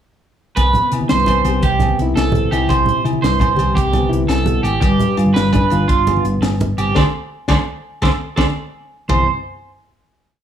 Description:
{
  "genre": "highlife guitar band",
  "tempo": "112 BPM (dotted quarters)",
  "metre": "12/8",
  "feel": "straight",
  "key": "C major",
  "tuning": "A4 = 439 Hz",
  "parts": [
    { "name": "nylon-string guitar", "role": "accompaniment", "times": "0.6-9.3 s", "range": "G2 to G4", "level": "-21 LUFS", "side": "left 5 dB", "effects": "none" },
    { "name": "electric guitar at the edge of break-up", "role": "arpeggios", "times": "0.6-9.3 s", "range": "F4 to D5", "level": "-19 LUFS", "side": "right 4 dB", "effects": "lush chorus, slapback echo" },
    { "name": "hollow-body short-scale fingered electric bass", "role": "bass", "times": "0.6-9.3 s", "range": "G1 to C3", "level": "-19 LUFS", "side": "right 1 dB", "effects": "none" },
    { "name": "tight funk drum kit", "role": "drums", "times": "0.6-9.2 s", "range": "hi-hat, kick drum, snare drum, toms", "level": "-20 LUFS", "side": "equal", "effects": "none" },
    { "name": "agogo bells", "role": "percussion", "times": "0.6-9.2 s", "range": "none", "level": "-29 LUFS", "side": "left 4 dB", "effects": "none" },
    { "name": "congas", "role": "percussion", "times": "0.6-9.3 s", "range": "none", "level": "-23 LUFS", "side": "right 2 dB", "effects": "none" }
  ],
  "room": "light reverb",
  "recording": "studio reverb",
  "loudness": "-14 LUFS",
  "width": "side -9 dB against mid",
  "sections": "0.6-9.1 groove; 9.1-10.4 final chord",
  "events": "band accent 7.0-9.1",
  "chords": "0.6 Cmaj7; 4.8 G7; 7.0 D5; 9.1 C",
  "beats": "| 0.57 1.10 1.63 2.17 | 2.70 3.23 3.76 4.29 | 4.83 5.36 5.89 6.43 | 6.96 7.50 8.03 8.56 | 9.10"
}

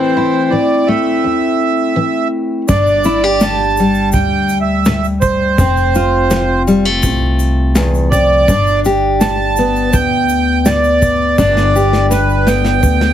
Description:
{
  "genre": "acoustic folk duo or small band",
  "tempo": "83 BPM",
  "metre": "4/4",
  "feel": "straight",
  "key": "G mixolydian",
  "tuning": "A4 = 440 Hz",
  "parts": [
    { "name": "accordion", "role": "second line", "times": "0.0-13.1 s", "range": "B4 to A5", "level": "-15 LUFS", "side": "right 4 dB", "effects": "none" },
    { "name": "fingerpicked steel-string acoustic guitar", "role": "accompaniment", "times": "0.0-13.1 s", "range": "E2 to G4", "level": "-15 LUFS", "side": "left 2 dB", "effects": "none" },
    { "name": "upright bass", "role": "bass", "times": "2.7-13.1 s", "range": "F1 to D2", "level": "-17 LUFS", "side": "equal", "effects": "none" },
    { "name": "soft brush drum kit", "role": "drums", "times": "2.7-13.1 s", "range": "hi-hat, kick drum, snare drum", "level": "-18 LUFS", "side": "equal", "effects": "none" },
    { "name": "egg shaker", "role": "percussion", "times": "2.7-13.1 s", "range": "none", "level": "-30 LUFS", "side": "left 4 dB", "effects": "none" }
  ],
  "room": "light reverb",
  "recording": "heavily compressed radio sound, multiband compression",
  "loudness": "-11 LUFS",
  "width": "side -10 dB against mid",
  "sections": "0.0-13.1 A section",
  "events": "accordion solo 0.0-13.1; drum fill 11.4-13.1",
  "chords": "0.0 Am; 2.7 G5; 5.6 F; 8.5 G",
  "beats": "0.51 1.24 1.96 | 2.68 3.41 4.13 4.86 | 5.58 6.31 7.03 7.76 | 8.48 9.21 9.93 10.66 | 11.38 12.11 12.83"
}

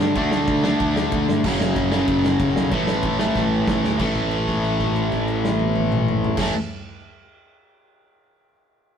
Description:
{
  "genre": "punk rock",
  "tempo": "187 BPM",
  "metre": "4/4",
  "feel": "straight",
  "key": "A major",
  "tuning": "A4 = 440 Hz",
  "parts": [
    { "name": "cranked stack guitar", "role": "riff", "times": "0.0-6.5 s", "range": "F#2 to D4", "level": "-20 LUFS", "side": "equal", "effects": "overdrive" },
    { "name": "fuzz picked electric bass", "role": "bass", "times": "0.0-6.5 s", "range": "F#1 to G2", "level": "-27 LUFS", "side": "equal", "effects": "overdrive" },
    { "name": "big rock drum kit", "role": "drums", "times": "0.0-6.4 s", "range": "crash cymbal, kick drum, ride cymbal, snare drum, toms", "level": "-25 LUFS", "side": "equal", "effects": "none" }
  ],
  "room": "moderate stone room reverb, RT60 1.2 s",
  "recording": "rough rehearsal-room recording",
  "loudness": "-18 LUFS",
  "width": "side -8 dB against mid",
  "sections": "0.0-4.0 A section; 4.0-6.6 B section",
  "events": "drum fill 3.4-4.0; held note 4.0-6.4",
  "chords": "0.0 D5; 1.4 F#5; 2.7 A5",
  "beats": "| 0.15 0.47 0.80 1.11 | 1.44 1.76 2.08 2.40 | 2.72 3.04 3.36 3.68 | 4.00 4.32 4.64 4.96 | 5.28 5.60 5.92 6.24"
}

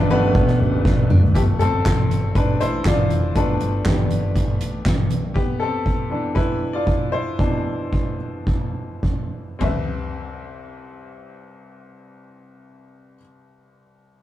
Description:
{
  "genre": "piano-driven pop",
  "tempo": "102-120 BPM",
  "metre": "4/4",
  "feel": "straight",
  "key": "C major",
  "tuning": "A4 = 442 Hz",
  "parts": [
    { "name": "bright upright piano", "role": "accompaniment", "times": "0.0-14.2 s", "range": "C2 to E5", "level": "-24 LUFS", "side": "left 2 dB", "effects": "none" },
    { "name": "vintage muted fingered electric bass", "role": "bass", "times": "0.0-5.3 s", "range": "F1 to B1", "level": "-23 LUFS", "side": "equal", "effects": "none" },
    { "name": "fingerpicked steel-string acoustic guitar", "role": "riff", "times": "0.1-1.2 s", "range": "B3 to D4", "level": "-27 LUFS", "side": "right 3 dB", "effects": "none" },
    { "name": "soft-mallet drum kit", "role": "drums", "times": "0.1-9.7 s", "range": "handclaps, hi-hat, kick drum, ride cymbal, snare drum, toms", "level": "-20 LUFS", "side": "equal", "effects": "none" }
  ],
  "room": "moderate studio ambience, RT60 0.5 s",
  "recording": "rough rehearsal-room recording, tube saturation",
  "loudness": "-18 LUFS",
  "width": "side -13 dB against mid",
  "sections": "0.0-1.4 A section; 1.4-9.6 B section; 9.6-14.2 C section",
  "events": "upright piano solo 0.0-1.4, 1.4-9.6; drum fill 0.8-1.4; slowing down 5.4-9.6",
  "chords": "0.0 G7; 5.4 Cmaj7",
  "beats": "0.35 0.85 | 1.35 1.85 2.35 2.85 | 3.35 3.85 4.35 4.85 | 5.35 5.85 6.36 6.87 | 7.39 7.93 8.47 9.03 | 9.61 10.20 10.79 11.38 | 11.97 12.55 13.14 13.73"
}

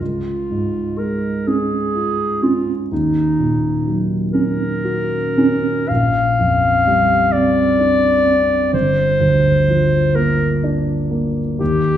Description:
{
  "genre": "classical, impressionist duo for clarinet and grand piano",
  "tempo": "42 BPM (dotted quarters)",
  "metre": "6/8",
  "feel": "rubato",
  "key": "unclear",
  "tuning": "A4 = 440 Hz",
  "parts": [
    { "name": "warm clarinet", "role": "melody", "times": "0.0-12.0 s", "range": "Eb4 to F5", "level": "-18 LUFS", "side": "left 1 dB", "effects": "none" },
    { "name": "dark baby grand piano", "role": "accompaniment", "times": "0.0-12.0 s", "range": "G1 to Gb4", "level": "-17 LUFS", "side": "right 1 dB", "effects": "none" }
  ],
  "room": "wet recital hall reverb, RT60 1.3 s",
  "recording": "recorded in a church or concert hall",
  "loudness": "-14 LUFS",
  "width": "side -10 dB against mid",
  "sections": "0.0-12.0 A section",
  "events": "none",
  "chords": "0.0 Db; 2.9 Ebm7; 5.9 Bb69; 8.7 Gm7",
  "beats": "| 0.00 1.48 | 2.91 4.33 | 5.89 7.33 | 8.73 10.16 | 11.60"
}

